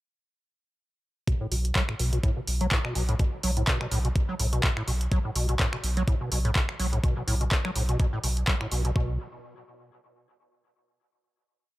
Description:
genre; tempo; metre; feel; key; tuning
acid house; 125 BPM; 4/4; swing 56% on 16ths; unclear; A4 = 439 Hz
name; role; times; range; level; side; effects
deep acid bass; riff; 1.3-9.2 s; A2 to F#3; -31 LUFS; equal; analog chorus, cassette tape, sidechain pumping, tape echo
electronic kick drum; drums; 1.3-9.1 s; none; -26 LUFS; equal; none
punchy analog drum machine; drums; 1.3-8.9 s; finger snaps, handclaps, hi-hat; -30 LUFS; equal; none
round analog bass; bass; 1.5-9.2 s; B1; -27 LUFS; equal; sidechain pumping
room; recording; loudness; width
little or no reverb; none; -24 LUFS; side -17 dB against mid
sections
1.3-9.0 groove; 9.0-10.9 final note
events
none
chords
1.3 B5; 9.0 N.C.

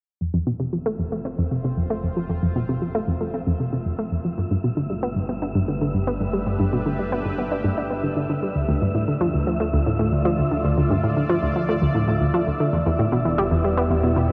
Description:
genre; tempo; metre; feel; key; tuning
ambient; 115 BPM; 4/4; straight; F lydian; A4 = 439 Hz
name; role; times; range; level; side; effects
sweeping resonant pad; sustained chords; 1.1-14.3 s; A3 to D5; -32 LUFS; equal; chorus
analog pluck; riff; 0.2-14.3 s; D2 to D4; -24 LUFS; equal; chorus, analog delay
fat analog bass; bass; 0.2-14.3 s; E1 to D2; -34 LUFS; equal; none
wind-like tuned noise texture; texture; 1.0-14.3 s; E5; -36 LUFS; equal; built-in reverb
room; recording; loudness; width
wet huge ambient reverb, RT60 7.7 s; dark, warm production; -23 LUFS; mono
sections
0.2-14.3 A section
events
fade-in on analog synth pad 0.2-14.3; fade-in on analog synth bass 0.2-14.3; fade-in on synth texture 0.2-14.3; filter sweep on synth arpeggio sound 0.2-14.3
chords
0.2 F; 4.4 Gadd9; 8.6 Dm; 12.7 Em7

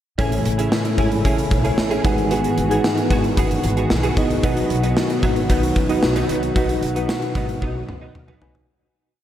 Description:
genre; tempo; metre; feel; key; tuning
1980s-style pop; 113 BPM; 4/4; straight; unclear; A4 = 440 Hz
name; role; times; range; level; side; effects
mellow tine electric piano; accompaniment; 0.2-8.7 s; G#2 to G#5; -22 LUFS; equal; medium stereo tremolo
brassy analog pad; sustained chords; 0.2-8.6 s; C#3 to F#4; -25 LUFS; left 1 dB; chorus, phaser
direct-recorded clean electric guitar; riff; 0.2-8.6 s; F#3 to G#4; -27 LUFS; right 3 dB; ensemble chorus, tape echo
upright bass; bass; 0.2-8.6 s; F#1 to C#2; -25 LUFS; equal; none
gated 80s drum kit; drums; 0.2-8.7 s; hi-hat, kick drum, snare drum, tambourine, toms; -22 LUFS; equal; none
room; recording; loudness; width
moderate huge ambient reverb, RT60 7.8 s; dreamy mix soaked in reverb; -17 LUFS; side -11 dB against mid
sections
0.2-8.7 pre-chorus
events
fade-out 6.6-8.7; drum fill 7.6-8.7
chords
0.2 Amaj7; 2.0 G#m7; 4.4 B

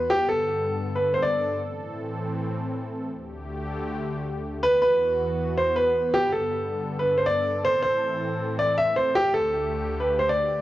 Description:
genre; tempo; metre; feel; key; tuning
hip hop; 159 BPM; 4/4; half-time; G major; A4 = 440 Hz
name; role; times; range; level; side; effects
clear concert grand piano; melody; 0.0-1.6, 4.6-10.6 s; G4 to E5; -22 LUFS; equal; low-pass filter
warm analog pad; sustained chords; 0.0-10.6 s; D2 to A4; -30 LUFS; left 1 dB; chorus
room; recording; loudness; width
light reverb, small room reverb; dry, gritty hardware recording, transformer saturation; -22 LUFS; side -15 dB against mid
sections
0.0-10.6 A section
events
break 1.6-4.6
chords
0.1 Gadd9; 1.6 Am; 3.1 Dsus4; 4.6 Esus2; 6.1 Gadd9; 7.6 Am; 9.2 Dsus4

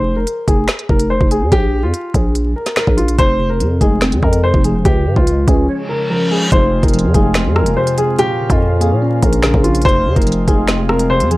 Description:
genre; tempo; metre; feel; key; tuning
hip hop, drill; 144 BPM; 4/4; half-time; F minor; A4 = 440 Hz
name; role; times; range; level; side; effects
dark baby grand piano; melody; 0.0-11.4 s; F4 to C5; -18 LUFS; left 1 dB; analog delay
growling 808-style bass; bass; 0.0-11.4 s; E1 to Bb2; -16 LUFS; equal; none
drill drum kit; drums; 0.3-11.4 s; finger snaps, hi-hat, kick drum, rim click, snare drum; -16 LUFS; equal; none
glassy digital keys; accompaniment; 3.2-11.4 s; F2 to Db5; -19 LUFS; equal; chorus
reverse cymbal; sound effects; 5.8-6.5 s; none; -22 LUFS; equal; none
mellow accordion; sustained chords; 6.5-11.4 s; C3 to F4; -25 LUFS; right 1 dB; none
room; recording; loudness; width
digital ambience; dry, gritty hardware recording, vinyl crackle; -12 LUFS; side -19 dB against mid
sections
0.0-6.5 A section; 6.5-11.4 B section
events
break 0.0-3.2, 5.7-6.5; reverse cymbal 5.8-6.5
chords
0.0 Fmadd11; 1.5 Bb5; 3.2 Fm; 4.9 Db; 6.5 Fm; 8.2 Bbm; 9.9 Fm

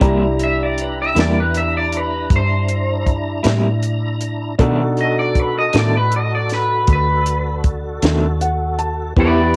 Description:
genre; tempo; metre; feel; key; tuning
slow blues; 52 BPM (dotted quarters); 12/8; straight; unclear; A4 = 440 Hz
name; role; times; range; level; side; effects
electric guitar through a small old amp; accompaniment; 0.0-9.4 s; B2 to G4; -22 LUFS; equal; tremolo, cassette tape
warm concert grand piano; accompaniment; 0.0-9.6 s; B3 to Bb5; -26 LUFS; equal; cassette tape
tonewheel organ; sustained chords; 0.0-9.6 s; B3 to Bb5; -30 LUFS; equal; slow rotary speaker, overdrive, chorus vibrato, cassette tape
vintage muted fingered electric bass; bass; 0.0-9.6 s; C2 to B2; -22 LUFS; equal; none
compact cocktail drum kit; drums; 0.0-9.6 s; hi-hat, kick drum, snare drum; -20 LUFS; equal; cassette tape
electric guitar through a small old amp; melody; 0.4-9.6 s; B4 to E5; -22 LUFS; equal; analog chorus, cassette tape
room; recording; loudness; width
small room ambience; home recording on cassette; -18 LUFS; mono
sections
0.0-9.6 A section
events
clean electric guitar solo 0.0-9.6; grand piano fill 8.0-9.2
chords
0.0 C7; 4.6 B7#9

